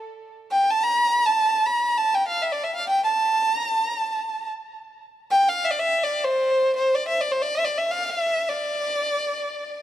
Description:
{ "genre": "Arabic maqam ensemble", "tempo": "free time", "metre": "none", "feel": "none", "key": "A maqam bayati", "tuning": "A4 = 442 Hz", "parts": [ { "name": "clear violin", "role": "solo", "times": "0.5-9.8 s", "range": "C5 to B5-50c", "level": "-20 LUFS", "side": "equal", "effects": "tape echo" } ], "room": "moderate studio reverb, RT60 0.6 s", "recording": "dark, warm production", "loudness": "-20 LUFS", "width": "side -12 dB against mid", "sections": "0.0-9.8 A section", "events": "none", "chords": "none" }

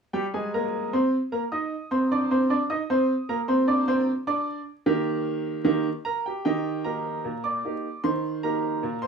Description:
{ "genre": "ragtime piano", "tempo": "76 BPM", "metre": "2/4", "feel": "straight", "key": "Eb major", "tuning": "A4 = 439 Hz", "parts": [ { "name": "bright upright piano", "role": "solo", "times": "0.1-9.1 s", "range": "Bb2 to Eb6", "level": "-23 LUFS", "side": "right 2 dB", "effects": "none" } ], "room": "light reverb", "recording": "vinyl crackle, small room ambience", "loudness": "-23 LUFS", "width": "side -6 dB against mid", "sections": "0.1-6.4 A section; 6.4-9.1 B section", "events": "none", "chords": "0.1 Eb" }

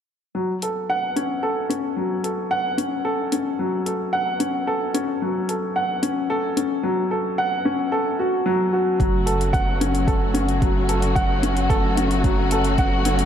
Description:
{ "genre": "piano and strings electronica", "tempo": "111 BPM", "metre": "4/4", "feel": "straight", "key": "F# minor", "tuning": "A4 = 440 Hz", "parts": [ { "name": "warm upright piano", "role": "riff", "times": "0.3-13.3 s", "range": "F#3 to F#5", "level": "-21 LUFS", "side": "equal", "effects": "tape echo" }, { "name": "electronic hi-hat", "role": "drums", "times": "0.6-13.3 s", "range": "none", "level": "-32 LUFS", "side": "left 3 dB", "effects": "overdrive" }, { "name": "warm studio string section", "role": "sustained chords", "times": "9.0-13.3 s", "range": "C#3 to F#4", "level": "-25 LUFS", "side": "left 2 dB", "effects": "sidechain pumping" }, { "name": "round analog bass", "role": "bass", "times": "9.0-13.3 s", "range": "F#1", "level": "-24 LUFS", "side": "right 1 dB", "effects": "sidechain pumping" }, { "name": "electronic kick drum", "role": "drums", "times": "9.0-12.9 s", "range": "none", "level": "-22 LUFS", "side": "right 1 dB", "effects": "overdrive" } ], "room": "moderate concert hall reverb, RT60 1.8 s", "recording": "none", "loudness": "-19 LUFS", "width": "side -9 dB against mid", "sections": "0.4-9.0 A section; 9.0-13.3 B section", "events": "none", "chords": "0.4 F#m" }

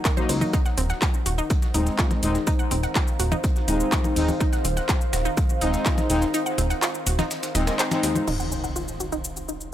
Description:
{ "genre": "melodic techno", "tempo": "124 BPM", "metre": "4/4", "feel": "straight", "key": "unclear", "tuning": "A4 = 440 Hz", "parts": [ { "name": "wide unison pluck", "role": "arpeggios", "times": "0.0-9.6 s", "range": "Bb3 to Gb5", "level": "-31 LUFS", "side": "right 1 dB", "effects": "sidechain pumping, analog delay" }, { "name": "bowed-like drone", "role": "drone", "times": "0.0-9.7 s", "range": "Eb3 to Eb4", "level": "-38 LUFS", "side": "right 1 dB", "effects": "none" }, { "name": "deep dark ambient pad", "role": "texture", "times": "0.0-9.7 s", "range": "C5 to C6", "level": "-33 LUFS", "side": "right 1 dB", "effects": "chorus, built-in reverb, sidechain pumping" }, { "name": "dusty soul sampler-style drum kit", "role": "drums", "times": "0.1-8.2 s", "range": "hi-hat, snare drum", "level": "-36 LUFS", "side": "right 1 dB", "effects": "sidechain pumping on hats, high-pass filter on hats, small room ambience, high-pass filter on snare, high-pass filter on room" }, { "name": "electronic kick drum", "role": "drums", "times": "0.1-6.0 s", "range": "none", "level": "-23 LUFS", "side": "equal", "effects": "overdrive, small room ambience" }, { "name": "techno drum kit", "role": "drums", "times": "0.1-9.7 s", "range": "congas, crash cymbal, handclaps, hi-hat, shaker", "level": "-28 LUFS", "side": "left 1 dB", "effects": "small room ambience" }, { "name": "analog synth brass", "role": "stabs", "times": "0.2-8.3 s", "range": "Gb3 to Eb4", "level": "-28 LUFS", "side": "left 2 dB", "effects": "chorus, sidechain pumping, analog delay" }, { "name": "plucky analog bass", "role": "bass", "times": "0.3-9.7 s", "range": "Eb1 to Eb2", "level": "-26 LUFS", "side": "equal", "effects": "sidechain pumping" }, { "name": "impact", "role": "sound effects", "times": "8.3-9.7 s", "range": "none", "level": "-33 LUFS", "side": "equal", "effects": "none" } ], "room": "digital ambience", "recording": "dry, gritty hardware recording, transformer saturation", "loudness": "-21 LUFS", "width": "side -12 dB against mid", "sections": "0.0-8.3 A section; 8.3-9.7 B section", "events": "kick drops out 6.3-8.3; band accent 7.8; impact 8.3-9.7; filter sweep on synth arpeggio sound 8.3-9.7", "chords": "0.0 Ebm; 0.5 Ab/Eb; 8.3 Ebm" }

